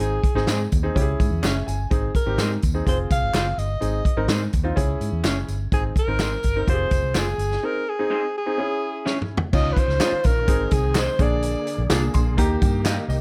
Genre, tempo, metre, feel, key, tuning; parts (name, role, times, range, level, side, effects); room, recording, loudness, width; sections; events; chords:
uptempo 1960s-style soul; 126 BPM; 4/4; straight; Ab major; A4 = 440 Hz
clear alto saxophone; melody; 0.0-11.9 s; Ab4 to F5; -28 LUFS; equal
clear concert grand piano; accompaniment; 0.0-13.2 s; Bb3 to C6; -30 LUFS; equal
vintage muted fingered electric bass; bass; 0.0-13.2 s; F1 to Ab2; -27 LUFS; equal
tambourine and handclaps; percussion; 0.0-13.2 s; -39 LUFS; equal
vintage drum kit; drums; 0.2-13.2 s; crash cymbal, hi-hat, kick drum, snare drum, toms; -25 LUFS; equal
electric guitar through a small old amp; stabs; 0.5-13.0 s; Bb3 to Eb5; -31 LUFS; equal
tonewheel organ; sustained chords; 9.5-13.2 s; D3 to Ab4; -37 LUFS; equal
light reverb, studio ambience; -22 LUFS; mono
0.0-9.5 A section; 9.5-13.2 B section
grand piano fill 1.2-1.9, 11.9-13.2; break 7.6-9.5; drum fill 9.1-9.5
0.0 Ab; 1.0 Dbm; 1.9 Ab; 2.9 Fm; 3.8 Ab; 4.8 Dbm; 5.7 Ab; 6.7 Fm; 7.6 Ab; 8.6 Dbm; 9.5 Dbadd9; 10.5 Ab; 11.2 Bb7; 12.4 Eb